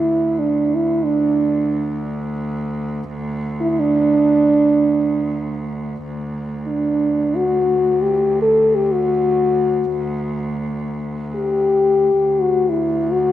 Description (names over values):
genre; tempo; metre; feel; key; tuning
Turkish makam ensemble; free time; none; none; D makam rast; A4 = 440 Hz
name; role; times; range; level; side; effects
dark French horn; melody; 0.0-13.3 s; D4 to A4; -16 LUFS; equal; none
rich cello; drone; 0.0-13.3 s; D2; -25 LUFS; right 1 dB; none
room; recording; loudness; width
moderate concert hall reverb, RT60 2.4 s; none; -16 LUFS; side -12 dB against mid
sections
0.0-6.0 A section; 6.0-13.3 A section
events
none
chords
none